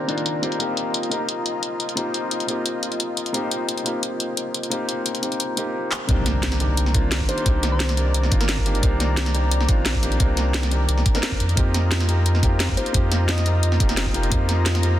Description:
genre	liquid drum and bass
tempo	175 BPM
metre	4/4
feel	straight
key	C minor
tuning	A4 = 440 Hz
part	dark concert grand piano	accompaniment	0.0-15.0 s	Bb3 to Bb4	-26 LUFS	left 1 dB	low-pass filter, dub echo
part	warm analog pad	sustained chords	0.0-15.0 s	Eb3 to Bb5	-31 LUFS	left 1 dB	chorus, sidechain pumping
part	drum and bass drum kit	drums	0.1-14.9 s	handclaps, hi-hat, snare drum	-25 LUFS	equal	low-pass filter on hats, low-pass filter on snare, low-pass filter on room
part	warm sub bass	bass	6.1-15.0 s	F1 to F2	-21 LUFS	equal	none
part	electronic kick drum	drums	6.1-14.4 s	none	-21 LUFS	equal	none
part	impact	sound effects	6.1-7.5 s	none	-30 LUFS	equal	none
part	soft struck synth lead	melody	7.3-8.9, 12.8-13.8 s	Bb4 to Eb5	-33 LUFS	left 1 dB	chorus, dub echo
room	light reverb, digital ambience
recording	dense, heavily limited modern master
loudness	-19 LUFS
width	side -12 dB against mid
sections	0.0-6.1 A section; 6.1-15.0 B section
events	drum fill 5.9; drop 6.1-15.0; impact 6.1-7.5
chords	0.4 F7sus4; 6.1 Cm9; 11.4 F7sus4

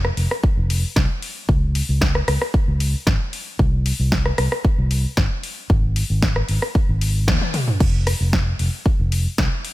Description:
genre	nu-disco, nu disco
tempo	114 BPM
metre	4/4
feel	straight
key	F minor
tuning	A4 = 439 Hz
part	fingered electric bass	bass	0.0-9.5 s	F1 to Eb2	-20 LUFS	equal	none
part	house drum kit	drums	0.0-9.7 s	crash cymbal, hi-hat, rim click, snare drum, toms	-24 LUFS	left 1 dB	none
part	electronic kick drum	drums	0.4-9.5 s	none	-19 LUFS	equal	none
room	little or no reverb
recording	none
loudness	-17 LUFS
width	side -17 dB against mid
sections	0.0-7.8 A section; 7.8-9.7 A section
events	drum fill 7.3-7.8; band accent 7.3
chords	none

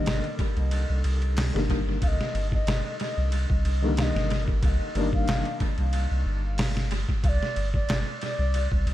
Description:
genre	trip hop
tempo	92 BPM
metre	4/4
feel	swing 54% on 16ths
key	C minor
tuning	A4 = 439 Hz
part	mellow wooden flute	melody	0.0-8.7 s	D5 to F5	-34 LUFS	left 1 dB	tape echo
part	felt-muted upright piano	accompaniment	0.0-6.7 s	D3 to D4	-32 LUFS	left 3 dB	tremolo, vintage 12-bit sampler grit, tape echo
part	soft dub sub bass	bass	0.0-8.9 s	G1 to C2	-26 LUFS	equal	none
part	trip hop sampler-style drum kit	drums	0.1-8.9 s	hi-hat, kick drum, ride cymbal, snare drum	-28 LUFS	equal	tape echo
room	digital ambience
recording	echo-heavy mix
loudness	-23 LUFS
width	side -14 dB against mid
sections	0.0-8.9 A section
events	none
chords	0.0 Cm9

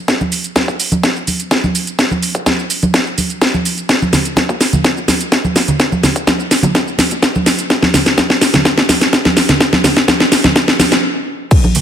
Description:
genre	house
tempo	126 BPM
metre	4/4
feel	straight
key	none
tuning	none
part	electronic kick drum	drums	0.1-11.6 s	none	-18 LUFS	equal	high-pass filter on kick, high-pass filter on room
part	house drum kit	drums	0.1-11.8 s	crash cymbal, hi-hat, ride cymbal, shaker, snare drum	-12 LUFS	equal	none
part	congas and bongos	percussion	0.2-11.8 s	none	-18 LUFS	right 2 dB	sidechain pumping on perc
room	moderate lush hall reverb, RT60 1.6 s, digital ambience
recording	none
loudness	-11 LUFS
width	side -9 dB against mid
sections	0.0-11.5 A section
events	build-up 0.0-11.5; drum fill 0.0-11.0; stop 11.0-11.5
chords	none

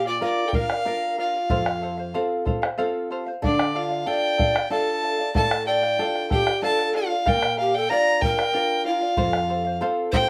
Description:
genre	andean folk, Andean ensemble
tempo	94 BPM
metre	3/4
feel	straight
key	D minor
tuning	A4 = 440 Hz
part	warm fiddle	melody	0.0-10.3 s	D5 to Bb5	-27 LUFS	equal	plate reverb
part	breathy pan flute	second line	0.0-10.3 s	D4 to D5	-29 LUFS	equal	none
part	charango	accompaniment	0.0-10.3 s	A4 to F5	-32 LUFS	equal	none
part	nylon-string guitar	accompaniment	0.0-10.3 s	F2 to Bb4	-32 LUFS	equal	none
part	bombo	percussion	0.5-10.3 s	none	-27 LUFS	equal	none
room	moderate studio reverb, RT60 0.6 s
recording	none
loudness	-23 LUFS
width	mono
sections	0.0-10.3 A section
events	none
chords	0.0 Bb; 1.5 F; 3.4 Dm; 7.3 Bb; 9.2 F

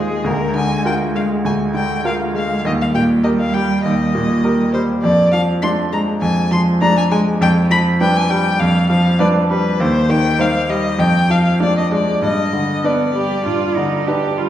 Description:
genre	quick classical-period movement for piano trio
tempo	100 BPM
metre	4/4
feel	straight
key	Eb major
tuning	A4 = 440 Hz
part	rich violin	melody	0.0-14.4 s	Ab4 to C6	-20 LUFS	left 3 dB	none
part	rich cello	second line	0.0-14.5 s	G3 to G4	-23 LUFS	right 3 dB	none
part	bright grand piano	accompaniment	0.0-14.5 s	D2 to D5	-16 LUFS	equal	none
room	wet recital hall reverb, RT60 1.6 s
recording	heard from further back in the room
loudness	-14 LUFS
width	side -11 dB against mid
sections	0.0-14.5 A section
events	none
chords	0.3 Bb7/D; 2.6 Eb; 5.0 Ddim/F; 7.4 G7/F; 9.8 Cm/Eb; 11.0 Ddim/F; 12.2 G

